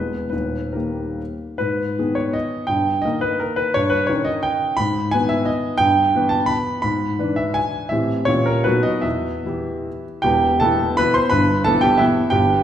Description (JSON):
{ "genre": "classical, romantic triple-time dance for piano with dotted rhythms", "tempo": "133-188 BPM", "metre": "3/4", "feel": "rubato", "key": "G# minor, E minor from 5.8 s", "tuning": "A4 = 440 Hz", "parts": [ { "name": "warm grand piano", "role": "solo", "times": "0.0-12.6 s", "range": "D#1 to C6", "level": "-17 LUFS", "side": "equal", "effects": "none" } ], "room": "wet recital hall reverb, RT60 1.6 s", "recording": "heard from further back in the room", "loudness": "-17 LUFS", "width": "side -10 dB against mid", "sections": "0.0-1.6 A section; 1.6-10.2 B section; 10.2-12.6 C section", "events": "none", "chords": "0.3 D#; 1.6 G#m; 2.7 D#/G; 3.8 D#7/G; 4.8 G#m; 5.8 Em/G; 6.8 E7/G#; 7.9 Am7; 8.3 A#dim7; 8.7 B; 9.1 Em; 11.3 Em/G" }